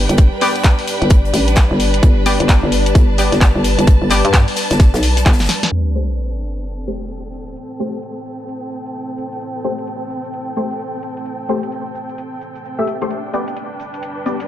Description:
bass house; 130 BPM; 4/4; swing 62% on 16ths; A minor; A4 = 440 Hz
deep dark ambient pad; sustained chords; 0.0-14.5 s; G3 to A5; -27 LUFS; left 1 dB; chorus, built-in reverb, sidechain pumping
orchestra-hit-like synth stab; stabs; 0.0-14.5 s; A3 to E5; -22 LUFS; left 2 dB; built-in reverb, cassette tape, sidechain pumping, tape echo
hollow knocking FM bass; bass; 0.0-5.5 s; G1 to G2; -16 LUFS; equal; sidechain pumping
rich chamber string section; texture; 0.0-14.5 s; C4 to A5; -25 LUFS; equal; sidechain pumping
house drum kit; drums; 0.1-14.5 s; handclaps, hi-hat, shaker, snare drum; -20 LUFS; left 1 dB
modern studio drum kit; drums; 0.1-14.5 s; hi-hat, snare drum; -30 LUFS; left 2 dB; sidechain pumping on hats, high-pass filter on hats, low-pass filter on hats, high-pass filter on snare, low-pass filter on snare, high-pass filter on room, low-pass filter on room
electronic kick drum; drums; 0.2-5.4 s; -10 LUFS; equal
sub drop; sound effects; 5.7-7.6 s; -21 LUFS; equal
light reverb; low-pass filter; -13 LUFS; side -12 dB against mid
0.0-5.7 A section; 5.7-14.5 B section
drum fill 5.4-5.7; impact 5.7-7.6; filter sweep on synth stab 5.7-14.5; filter sweep on ambient pad 5.7-14.5
0.0 G; 5.7 Am7; 13.1 G
| 0.18 0.64 1.10 1.57 | 2.03 2.49 2.95 3.41 | 3.87 4.34 4.80 5.26 | 5.72 6.18 6.64 7.11 | 7.57 8.03 8.49 8.95 | 9.41 9.87 10.34 10.80 | 11.26 11.72 12.18 12.64 | 13.11 13.57 14.03

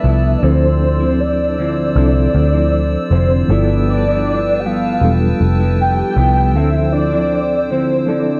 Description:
indie pop, bedroom pop; 78 BPM; 4/4; straight; D dorian; A4 = 440 Hz
soft octave-layered synth lead; melody; 0.0-8.4 s; C5 to G5; -21 LUFS; equal; phaser, ensemble chorus, tape echo
mellow electric guitar; accompaniment; 0.0-8.4 s; G2 to E4; -22 LUFS; equal; analog chorus, warbly pitch drift
reed electric piano; accompaniment; 0.0-8.4 s; F3 to A4; -24 LUFS; equal; fast tremolo, cassette tape
hollow soft pad; sustained chords; 0.0-8.4 s; B4 to E6; -29 LUFS; equal; chorus
vintage muted picked electric bass; bass; 0.0-8.4 s; E1 to D2; -18 LUFS; equal
digital ambience; dry, close 1970s-style studio recording; -15 LUFS; mono
0.0-8.4 A section
0.4 Dm9; 3.5 G13; 6.5 Dm9
| 0.43 1.19 1.96 2.72 | 3.49 4.25 5.02 5.78 | 6.55 7.32 8.08

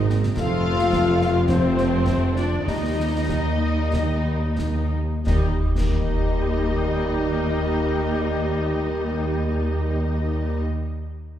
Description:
cinematic, heroic adventure film score; 88-110 BPM; 4/4; straight; Eb major; A4 = 440 Hz
dark symphonic violin section; melody; 0.0-10.6 s; C5 to F5; -33 LUFS; left 4 dB
concert flute; second line; 0.0-10.6 s; G4 to F5; -30 LUFS; equal
mellow clarinet; second line; 0.0-10.6 s; F4 to Bb4; -33 LUFS; left 3 dB
warm studio violin section; second line; 0.0-10.6 s; G3 to Eb4; -32 LUFS; left 1 dB
warm symphonic viola section; accompaniment; 0.0-10.6 s; C4 to F4; -32 LUFS; equal
mellow French horn section; sustained chords; 0.0-10.1 s; C4 to F4; -30 LUFS; left 3 dB
dark symphonic cello section; bass; 0.0-10.6 s; Eb2 to Ab2; -27 LUFS; right 1 dB
mellow tuba; bass; 0.0-10.6 s; F1 to Eb2; -31 LUFS; right 2 dB
warm symphonic double bass section; bass; 0.0-10.6 s; F1 to Eb2; -27 LUFS; right 1 dB
concert snare drum, concert bass drum and clash cymbals; drums; 0.1-6.0 s; -27 LUFS; equal
wet scoring stage reverb, RT60 1.8 s; heard from further back in the room; -20 LUFS; side -10 dB against mid
0.0-5.3 A section; 5.3-10.7 B section
slowing down 0.0-5.3
0.4 F; 2.7 Eb
| 0.37 0.92 1.49 2.06 | 2.67 3.29 3.93 4.58 | 5.27 5.95 6.63 7.31 | 7.99 8.68 9.36 10.04

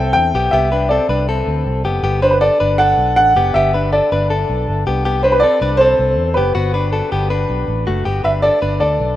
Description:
jangly indie pop; 159 BPM; 4/4; straight; G major; A4 = 440 Hz
warm upright piano; melody; 0.0-9.2 s; B4 to G5; -15 LUFS; right 1 dB
direct-recorded clean electric guitar; arpeggios; 0.0-9.2 s; A3 to B4; -20 LUFS; left 4 dB; analog delay
vintage muted fingered electric bass; bass; 0.0-9.2 s; F#1 to E2; -19 LUFS; equal
moderate lush hall reverb, RT60 2.8 s; rough home demo mix; -13 LUFS; side -13 dB against mid
0.0-8.1 A section; 8.1-9.2 B section
0.0 Cmaj7(no3); 2.0 Gmaj7; 4.9 Cmaj7(no3); 6.6 Gmaj7
0.16 | 0.54 0.91 1.29 1.67 | 2.04 2.42 2.79 3.17 | 3.55 3.92 4.30 4.68 | 5.05 5.43 5.80 6.18 | 6.56 6.93 7.31 7.69 | 8.06 8.44 8.82

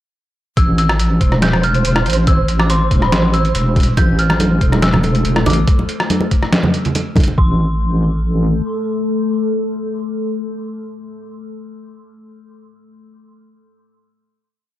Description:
deep dubstep; 141 BPM; 4/4; half-time; A minor; A4 = 438 Hz
dark detuned synth bell; melody; 0.6-10.8 s; B5 to G6; -23 LUFS; left 1 dB; chorus, dub echo
wobble bass; bass; 0.6-8.6 s; E1 to A1; -15 LUFS; equal; chorus, tube saturation
electronic kick drum; drums; 0.6-7.5 s; -14 LUFS; equal; overdrive
trip hop sampler-style drum kit; drums; 0.6-7.3 s; hi-hat, rim click, snare drum; -19 LUFS; equal; overdrive
flickering grainy texture; texture; 1.2-5.7 s; C5; -26 LUFS; right 4 dB; built-in reverb
deep dark ambient pad; sustained chords; 4.6-10.8 s; A3 to A4; -23 LUFS; left 3 dB; chorus, built-in reverb
congas; percussion; 4.0-7.4 s; -19 LUFS; right 1 dB
digital ambience; dry, gritty hardware recording; -13 LUFS; side -14 dB against mid
0.6-7.4 drop; 7.4-10.8 final chord
drop 0.6-7.4
0.6 Am
| 0.57 0.99 1.42 1.85 | 2.27 2.70 3.12 3.55 | 3.97 4.40 4.83 5.25 | 5.68 6.10 6.53 6.95 | 7.38 7.80 8.23 8.65 | 9.08 9.51 9.93 10.36

